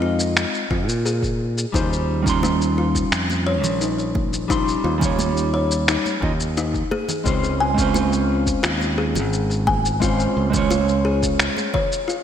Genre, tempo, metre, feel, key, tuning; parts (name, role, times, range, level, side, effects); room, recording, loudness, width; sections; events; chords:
sunset chillout; 87 BPM; 4/4; straight; A4 = 440 Hz
mellow electric guitar; accompaniment; 0.0-11.7 s; G3 to C6; -23 LUFS; moving between left 5 dB and right 6 dB; auto-pan, digital delay
kalimba; arpeggios; 0.0-12.2 s; Eb4 to Ab5; -25 LUFS; left 3 dB; digital delay
modern bright fingered electric bass; bass; 0.0-11.5 s; Ab1 to Bb2; -23 LUFS; equal
electronic shaker and finger snaps; drums; 0.2-12.2 s; -25 LUFS; equal; gated reverb
electronic kick drum; drums; 0.7-11.9 s; -26 LUFS; equal
congas; percussion; 2.4-11.9 s; -31 LUFS; right 4 dB
moderate lush hall reverb, RT60 2.8 s; bright 1980s-style digital production; -18 LUFS; side -9 dB against mid
0.0-12.2 A section
0.0 Fm7; 1.7 Eb13; 6.9 Dbmaj7